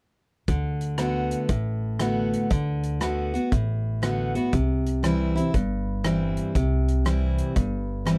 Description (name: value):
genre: honky-tonk and classic country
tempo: 119 BPM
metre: 4/4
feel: swing 65% on 8ths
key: D mixolydian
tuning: A4 = 440 Hz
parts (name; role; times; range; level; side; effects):
- picked steel-string acoustic guitar; accompaniment; 0.5-8.2 s; G2 to F#4; -28 LUFS; equal; none
- upright bass; bass; 0.5-8.2 s; G1 to D2; -30 LUFS; equal; none
- natural country drum kit; drums; 0.5-8.2 s; hi-hat, kick drum, rim click; -29 LUFS; equal; none
room: little or no reverb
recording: dry, close 1970s-style studio recording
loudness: -25 LUFS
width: mono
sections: 0.5-8.2 A section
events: none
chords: 0.5 D6; 4.5 C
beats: | 0.48 0.99 1.49 2.00 | 2.50 3.01 3.52 4.02 | 4.53 5.03 5.54 6.04 | 6.55 7.05 7.56 8.06